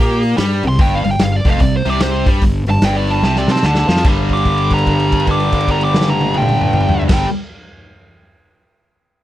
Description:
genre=blues rock power trio and southern rock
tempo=147 BPM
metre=4/4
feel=swing 62% on 8ths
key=unclear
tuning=A4 = 440 Hz
part: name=dark smooth lead guitar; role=melody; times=0.0-7.3 s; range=G4 to D6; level=-19 LUFS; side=right 1 dB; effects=overdrive, slapback echo
part: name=tight distorted guitar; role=riff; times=0.0-7.3 s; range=F2 to C4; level=-18 LUFS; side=left 1 dB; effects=distortion
part: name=fuzz fingered electric bass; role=bass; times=0.0-7.2 s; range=F1 to C3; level=-18 LUFS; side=equal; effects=overdrive
part: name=raw garage drum kit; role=drums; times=0.2-7.2 s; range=crash cymbal, hi-hat, kick drum, snare drum, toms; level=-17 LUFS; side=equal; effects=none
room=little or no reverb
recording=dry, close 1970s-style studio recording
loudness=-12 LUFS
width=side -14 dB against mid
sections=0.0-4.1 A section; 4.1-7.3 B section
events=drum fill 3.2-4.1; held note 4.1-7.1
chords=0.0 C5; 0.8 Fsus2; 1.6 C5; 2.4 Gsus2; 3.2 F6/C; 4.1 G5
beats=0.39 | 0.80 1.20 1.61 2.02 | 2.42 2.83 3.24 3.65 | 4.05 4.46 4.87 5.27 | 5.68 6.09 6.49 6.90

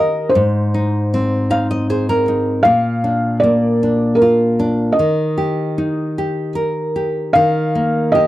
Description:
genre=children's music, lullaby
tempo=77 BPM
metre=3/4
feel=rubato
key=Eb major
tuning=A4 = 441 Hz
part: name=felt-muted upright piano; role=melody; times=0.0-8.3 s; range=Bb4 to F5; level=-16 LUFS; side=equal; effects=none
part: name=nylon-string guitar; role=accompaniment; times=0.0-8.3 s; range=Ab2 to F5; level=-16 LUFS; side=equal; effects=none
room=light reverb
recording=dry, close 1970s-style studio recording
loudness=-14 LUFS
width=side -15 dB against mid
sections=0.0-7.3 A section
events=nylon-string guitar fill 1.1-2.6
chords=0.3 Ab; 2.6 Bb; 5.0 Eb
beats=| 0.33 1.11 1.87 | 2.64 3.41 4.18 | 4.96 5.75 6.54 | 7.34 8.13

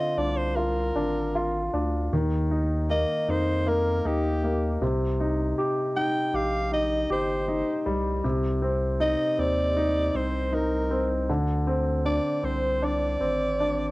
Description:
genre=pop ballad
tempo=79 BPM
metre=4/4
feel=straight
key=unclear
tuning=A4 = 439 Hz
part: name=growling soprano saxophone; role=melody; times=0.0-13.9 s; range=G4 to G5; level=-28 LUFS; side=equal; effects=cassette tape
part: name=clear baby grand piano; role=accompaniment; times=0.0-13.9 s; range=C3 to G4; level=-26 LUFS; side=equal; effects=cassette tape
part: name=saturated sub bass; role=bass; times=0.2-13.9 s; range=G1 to F2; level=-29 LUFS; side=equal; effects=none
room=light reverb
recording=home recording on cassette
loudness=-23 LUFS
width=side -20 dB against mid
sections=0.0-13.9 A section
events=none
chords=0.0 Bbadd9; 2.1 Ebadd9; 4.8 Cm7; 8.2 Cmadd9; 11.3 Fm6 (rootless)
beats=0.57 1.34 | 2.12 2.90 3.67 4.43 | 5.20 5.96 6.72 7.48 | 8.24 9.00 9.77 10.53 | 11.29 12.05 12.82 13.60

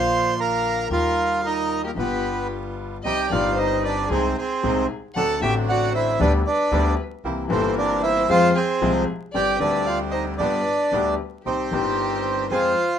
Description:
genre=tango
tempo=114 BPM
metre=4/4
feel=rubato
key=C harmonic minor from 3.0 s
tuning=A4 = 439 Hz
part: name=bandoneon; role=melody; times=0.0-13.0 s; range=Bb3 to C6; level=-22 LUFS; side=right 3 dB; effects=none
part: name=warm violin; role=second line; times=0.0-13.0 s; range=G4 to F#5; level=-27 LUFS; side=left 3 dB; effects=none
part: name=warm grand piano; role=accompaniment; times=0.0-12.7 s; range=G1 to Ab4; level=-26 LUFS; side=left 5 dB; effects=none
part: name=bandoneon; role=stabs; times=0.0-12.7 s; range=F#3 to Ab4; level=-31 LUFS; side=right 6 dB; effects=none
part: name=upright bass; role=bass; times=0.0-12.7 s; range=G1 to F2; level=-30 LUFS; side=equal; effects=none
room=moderate club reverb, RT60 0.7 s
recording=minimal, uncompressed stereo recording, vinyl crackle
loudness=-20 LUFS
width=side -8 dB against mid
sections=0.0-3.0 A section; 3.0-13.0 B section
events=none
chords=0.0 Bb; 0.9 Ebadd9; 2.0 G7; 3.0 Cm; 4.1 Ab/C; 5.2 D7; 6.2 G/D; 7.2 C7; 8.3 Fm; 9.3 Gsus4; 10.4 G; 11.5 Cm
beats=0.37 | 0.90 1.43 1.97 2.50 | 3.04 3.57 4.10 4.63 | 5.15 5.67 6.20 6.72 | 7.24 7.76 8.29 8.81 | 9.34 9.86 10.39 10.92 | 11.45 11.98 12.51

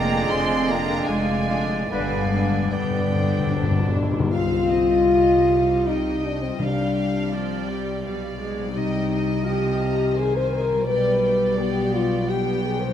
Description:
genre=classical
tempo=70-88 BPM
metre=3/4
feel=rubato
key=C minor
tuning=A4 = 439 Hz
part: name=warm chamber violin section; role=melody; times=0.0-12.9 s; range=C5 to C6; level=-36 LUFS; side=left 1 dB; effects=none
part: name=mellow flute section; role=second line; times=0.0-3.9 s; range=D5 to Ab5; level=-32 LUFS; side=right 2 dB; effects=none
part: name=warm chamber violin section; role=second line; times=0.0-12.9 s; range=B3 to G5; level=-32 LUFS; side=left 1 dB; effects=none
part: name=warm oboe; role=second line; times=0.0-4.0 s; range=D5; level=-31 LUFS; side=right 4 dB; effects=none
part: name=warm bassoon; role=accompaniment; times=0.0-4.0 s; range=Ab3 to B3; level=-30 LUFS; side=right 2 dB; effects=none
part: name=warm chamber viola section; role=accompaniment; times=0.0-12.9 s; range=D3 to D4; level=-32 LUFS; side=right 3 dB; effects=none
part: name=concert harp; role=arpeggios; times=0.0-12.9 s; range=F2 to D5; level=-29 LUFS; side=left 8 dB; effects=none
part: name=clear chamber double bass section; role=bass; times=0.0-12.9 s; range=F1 to C2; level=-28 LUFS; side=right 3 dB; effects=none
part: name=warm chamber cello section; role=bass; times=0.0-12.9 s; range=B2 to C4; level=-31 LUFS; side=right 1 dB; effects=none
part: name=dark French horn section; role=sustained chords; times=1.9-12.9 s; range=D3 to C5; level=-22 LUFS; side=left 2 dB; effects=none
part: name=dark trumpet section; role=stabs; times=1.9-2.2 s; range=B4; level=-36 LUFS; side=right 1 dB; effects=none
part: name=timpani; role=percussion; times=1.9-7.6 s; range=G2 to C3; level=-26 LUFS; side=left 2 dB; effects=none
room=moderate scoring stage reverb, RT60 2.1 s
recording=none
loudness=-19 LUFS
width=side -10 dB against mid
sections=0.0-4.3 A section; 4.3-12.9 B section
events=timpani fill 1.9-4.3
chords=0.0 Ddim/F; 1.9 G; 4.3 Cm; 6.6 G7/C; 8.8 Cm; 10.9 G7/B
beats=0.32 1.08 | 1.91 2.73 3.53 | 4.33 5.10 5.87 | 6.60 7.32 8.05 | 8.77 9.47 10.17 | 10.88 11.59 12.29

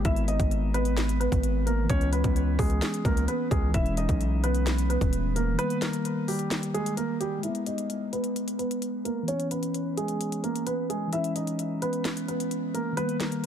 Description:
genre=hip hop, trap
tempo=130 BPM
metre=4/4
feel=half-time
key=G# harmonic minor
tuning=A4 = 440 Hz
part: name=mellow tine electric piano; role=accompaniment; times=0.0-13.5 s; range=D#3 to C#4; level=-32 LUFS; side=left 3 dB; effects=low-pass filter
part: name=hard-hitting 808-style bass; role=bass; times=0.0-5.6 s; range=D#1 to C#2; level=-27 LUFS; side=equal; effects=none
part: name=trap drum kit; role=drums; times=0.0-13.5 s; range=hi-hat, kick drum, snare drum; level=-30 LUFS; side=equal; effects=none
part: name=dark baby grand piano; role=melody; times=0.1-13.5 s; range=G3 to E5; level=-30 LUFS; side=right 3 dB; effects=low-pass filter, ping-pong delay
room=digital ambience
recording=dense, heavily limited modern master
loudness=-25 LUFS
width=side -9 dB against mid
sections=0.0-7.4 A section; 7.4-13.5 B section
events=break 5.6-7.4; filter sweep 7.4-13.5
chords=0.1 G#m; 1.9 C#m7; 3.7 E6; 5.6 D#; 7.4 G#m; 9.3 C#m7; 11.1 E6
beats=| 0.05 0.51 0.97 1.44 | 1.90 2.36 2.82 3.28 | 3.74 4.20 4.67 5.13 | 5.59 6.05 6.51 6.97 | 7.43 7.90 8.36 8.82 | 9.28 9.74 10.20 10.66 | 11.13 11.59 12.05 12.51 | 12.97 13.44

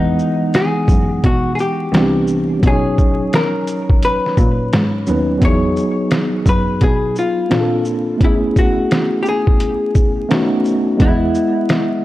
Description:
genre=hip hop, jazz-hop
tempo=86 BPM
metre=4/4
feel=swing 65% on 16ths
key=unclear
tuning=A4 = 440 Hz
part: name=vintage hollow-body jazz guitar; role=melody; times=0.0-12.0 s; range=D#4 to C#5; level=-20 LUFS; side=left 2 dB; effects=analog delay
part: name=tine electric piano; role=accompaniment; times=0.0-12.0 s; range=E3 to F#5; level=-18 LUFS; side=equal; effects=medium stereo tremolo
part: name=warm cello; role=bass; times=0.0-11.3 s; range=C2 to B2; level=-20 LUFS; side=equal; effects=tube saturation
part: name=trip hop sampler-style drum kit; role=drums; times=0.2-11.9 s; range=hi-hat, kick drum, shaker, snare drum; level=-16 LUFS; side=equal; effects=none
room=light reverb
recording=dry, gritty hardware recording, transformer saturation, vinyl crackle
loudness=-13 LUFS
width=side -16 dB against mid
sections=0.0-12.0 A section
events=none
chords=0.0 Emaj9; 1.9 Cmaj9; 2.6 Bmaj9; 5.4 Emaj9; 7.5 A#maj7; 8.2 Amaj7; 10.3 B9; 11.0 Emaj9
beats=0.53 1.23 1.93 | 2.62 3.32 4.02 4.72 | 5.41 6.11 6.81 7.51 | 8.21 8.90 9.60 10.30 | 10.99 11.69

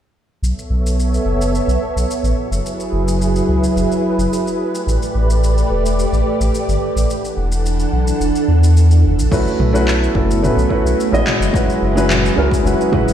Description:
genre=sunset chillout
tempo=108 BPM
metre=4/4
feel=straight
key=B minor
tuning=A4 = 440 Hz
part: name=soft string machine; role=sustained chords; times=0.4-13.1 s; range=E3 to F#5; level=-19 LUFS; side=right 1 dB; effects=ensemble chorus, shimmer reverb
part: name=warm sub bass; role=bass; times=0.4-13.1 s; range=E1 to E2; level=-16 LUFS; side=equal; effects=tube saturation
part: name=deep house drum kit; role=drums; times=0.4-13.1 s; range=crash cymbal, handclaps, shaker, toms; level=-26 LUFS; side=equal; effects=overdrive, studio reverb
part: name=dark grand piano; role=accompaniment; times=9.3-13.1 s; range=G#3 to D#5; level=-16 LUFS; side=equal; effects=auto-pan, digital delay, shimmer reverb
part: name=electronic kick drum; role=drums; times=9.3-13.0 s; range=none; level=-20 LUFS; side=equal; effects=overdrive, studio reverb
room=light reverb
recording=played on a big sound system in a bare room, stone room reverb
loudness=-14 LUFS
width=side -10 dB against mid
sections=0.4-9.3 A section; 9.3-13.1 B section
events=filter sweep on sub bass 0.4-9.3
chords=0.4 B9sus4; 2.4 F#9sus4; 4.6 A9sus4; 7.1 E9sus4; 9.3 B9sus4; 11.3 F#9sus4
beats=| 0.43 0.98 1.54 2.10 | 2.65 3.21 3.76 4.32 | 4.87 5.43 5.99 6.54 | 7.10 7.65 8.21 8.76 | 9.32 9.87 10.43 10.98 | 11.54 12.10 12.65

